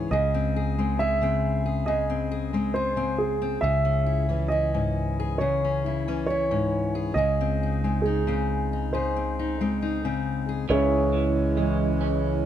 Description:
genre	acoustic folk-pop ballad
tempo	68 BPM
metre	4/4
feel	straight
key	C# harmonic minor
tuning	A4 = 440 Hz
part	dark upright piano	melody	0.0-12.4 s	C#4 to E5	-27 LUFS	right 2 dB	plate reverb
part	fingerpicked steel-string acoustic guitar	accompaniment	0.0-12.5 s	G#2 to G#4	-28 LUFS	left 5 dB	none
part	fingered electric bass	bass	0.0-12.5 s	C#2	-28 LUFS	right 1 dB	none
part	pedal harmonium	sustained chords	10.7-12.5 s	C#3 to C#4	-33 LUFS	right 4 dB	none
part	electric guitar through a small old amp	arpeggios	10.7-12.5 s	E3 to C#4	-29 LUFS	right 8 dB	harmonic tremolo
room	light reverb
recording	none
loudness	-23 LUFS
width	side -10 dB against mid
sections	0.0-10.7 A section; 10.7-12.5 A section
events	none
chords	0.1 G#/C#; 3.6 C#m; 7.2 G#/C#; 10.7 C#m

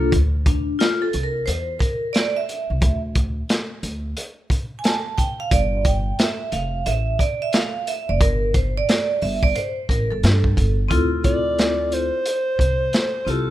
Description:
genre	hip hop, jazz-hop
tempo	89 BPM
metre	4/4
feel	swing 63% on 16ths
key	D minor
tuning	A4 = 439 Hz
part	vibraphone with hard mallets	accompaniment	0.0-13.5 s	C4 to A5	-23 LUFS	right 1 dB	none
part	upright bass	bass	0.0-13.5 s	F1 to G2	-22 LUFS	equal	none
part	crunchy breakbeat drum kit	drums	0.1-13.5 s	hi-hat, kick drum, snare drum	-21 LUFS	equal	none
part	mellow alto saxophone	melody	11.2-13.5 s	A4 to D5	-22 LUFS	equal	none
room	little or no reverb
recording	rough home demo mix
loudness	-19 LUFS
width	side -14 dB against mid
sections	0.1-10.9 A section; 10.9-13.5 B section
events	vibraphone solo 0.1-10.9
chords	0.1 Dsus2; 5.5 Gsus2; 10.9 Dm9

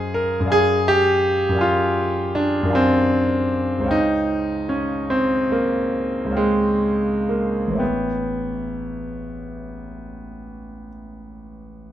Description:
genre	classical, impressionist solo piano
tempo	37-56 BPM (dotted quarters)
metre	9/8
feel	rubato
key	unclear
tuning	A4 = 440 Hz
part	clear concert grand piano	solo	0.0-11.9 s	A1 to Ab5	-19 LUFS	equal	none
room	light reverb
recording	close, detailed microphones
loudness	-18 LUFS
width	side -11 dB against mid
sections	0.0-11.9 A section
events	none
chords	0.0 Ab6/Gb; 0.5 Bb9/Gb; 3.9 Dbmaj7#11; 7.8 A9

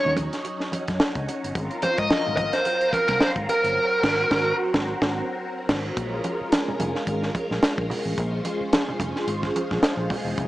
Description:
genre	funk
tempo	109 BPM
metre	4/4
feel	swing 56% on 16ths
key	Bb minor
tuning	A4 = 439 Hz
part	smooth overdriven lead guitar	melody	0.0-4.6 s	Bb4 to Eb5	-22 LUFS	right 1 dB	none
part	phased string machine	sustained chords	0.0-10.5 s	Gb3 to C5	-28 LUFS	equal	ensemble chorus, phaser
part	vintage muted fingered electric bass	bass	0.1-10.5 s	E1 to Ab2	-30 LUFS	equal	none
part	congas	percussion	0.1-10.2 s	none	-33 LUFS	right 2 dB	none
part	tight funk drum kit	drums	0.2-10.5 s	crash cymbal, hi-hat, kick drum, snare drum	-25 LUFS	equal	none
room	light reverb, small room ambience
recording	small speaker sound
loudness	-22 LUFS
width	side -16 dB against mid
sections	0.0-6.0 A section; 6.0-10.5 B section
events	band accent 3.8-6.0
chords	0.0 Ebm7; 1.6 Ab13; 6.0 Bbm7

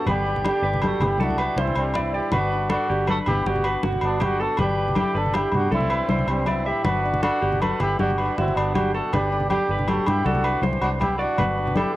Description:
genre	highlife guitar band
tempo	106 BPM (dotted quarters)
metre	12/8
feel	straight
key	G major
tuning	A4 = 444 Hz
part	breathy trumpet	melody	0.0-12.0 s	C4 to A4	-25 LUFS	equal	tape echo
part	warm tenor saxophone	second line	0.0-12.0 s	G3 to F#4	-32 LUFS	right 2 dB	cassette tape
part	nylon-string guitar	accompaniment	0.0-12.0 s	G2 to F#4	-33 LUFS	left 3 dB	cassette tape
part	electric guitar through a small old amp	arpeggios	0.0-11.9 s	F#4 to E5	-28 LUFS	right 3 dB	cassette tape, tape echo
part	fingered electric bass	bass	0.1-11.8 s	G1 to G2	-26 LUFS	equal	none
part	agogo bells	percussion	0.1-12.0 s	none	-30 LUFS	left 1 dB	none
part	congas	percussion	0.1-11.8 s	none	-28 LUFS	left 2 dB	none
room	light reverb, studio ambience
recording	home recording on cassette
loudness	-20 LUFS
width	side -16 dB against mid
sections	0.0-12.0 A section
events	none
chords	0.1 G; 1.2 Cadd9; 2.3 Gmaj7; 4.6 G; 5.7 Cadd9; 6.9 Gmaj7; 9.1 G; 10.3 Cadd9; 11.4 Gmaj7

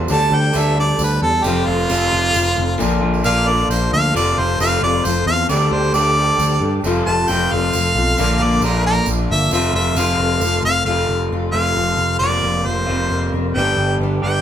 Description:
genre	folk rock and heartland rock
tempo	134 BPM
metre	3/4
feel	straight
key	unclear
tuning	A4 = 440 Hz
part	picked steel-string acoustic guitar	accompaniment	0.0-14.4 s	G2 to B4	-25 LUFS	left 5 dB	none
part	mellow tonewheel organ	sustained chords	0.0-14.4 s	G4 to D6	-29 LUFS	left 1 dB	chorus vibrato, stopped rotary speaker
part	electric guitar through a small old amp	riff	0.0-14.4 s	F2 to C5	-22 LUFS	right 2 dB	none
part	picked electric bass	bass	0.0-14.4 s	F1 to G2	-20 LUFS	equal	none
part	clear harmonica	melody	0.1-14.4 s	F4 to A5	-18 LUFS	equal	none
part	tambourine	percussion	0.1-10.6 s	none	-31 LUFS	right 5 dB	none
room	moderate large studio reverb, RT60 1.1 s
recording	band playing live in one room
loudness	-15 LUFS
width	side -10 dB against mid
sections	0.1-10.9 A section; 10.9-14.4 B section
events	harmonica solo 0.1-10.9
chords	0.1 Dsus4; 1.4 F; 2.8 Bb; 4.1 F; 5.5 Dsus4; 6.8 F; 8.2 Bb; 9.5 F; 12.2 Bbsus2/F; 13.6 G

